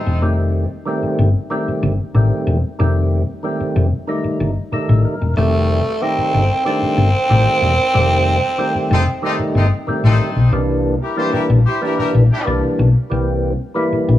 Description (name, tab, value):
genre	funk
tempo	93 BPM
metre	4/4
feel	straight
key	unclear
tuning	A4 = 438 Hz
part	warm horn section	second line	0.0-0.2, 8.9-12.4 s	C4 to C5	-23 LUFS	left 2 dB	none
part	hollow-body short-scale fingered electric bass	bass	0.1-14.2 s	E1 to C2	-15 LUFS	left 1 dB	none
part	percussive tonewheel organ	stabs	0.2-14.2 s	Eb3 to Bb4	-20 LUFS	equal	overdrive, slow rotary speaker
part	growling tenor saxophone	melody	5.4-9.8 s	A3 to C4	-18 LUFS	right 1 dB	analog delay
room	light reverb, studio ambience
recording	none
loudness	-14 LUFS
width	side -13 dB against mid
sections	0.0-10.5 A section; 10.5-14.2 B section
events	band accent 0.0, 8.0-10.5; tonewheel organ fill 4.4-5.4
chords	0.0 F9; 10.5 C9